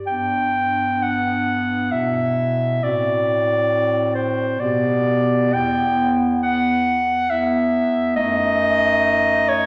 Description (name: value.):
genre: classical, lyrical piece for single-reed quartet.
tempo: 67 BPM.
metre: 3/4.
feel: uneven beats, rubato.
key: G major.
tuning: A4 = 439 Hz.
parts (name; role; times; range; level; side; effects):
warm clarinet; melody; 0.1-9.7 s; C5 to G5; -21 LUFS; equal; none.
dark clarinet; second line; 0.1-9.7 s; D4 to G4; -33 LUFS; equal; none.
dark clarinet; accompaniment; 0.1-9.7 s; A3 to C4; -26 LUFS; equal; none.
mellow bass clarinet; bass; 0.1-9.7 s; E2 to B2; -29 LUFS; equal; none.
room: wet scoring stage reverb, RT60 1.7 s.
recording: none.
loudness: -19 LUFS.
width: mono.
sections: 0.1-9.7 A section.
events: none.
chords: 0.1 G; 2.8 F#dim/A; 4.6 G/B; 5.5 E5; 8.2 D#dim/F#.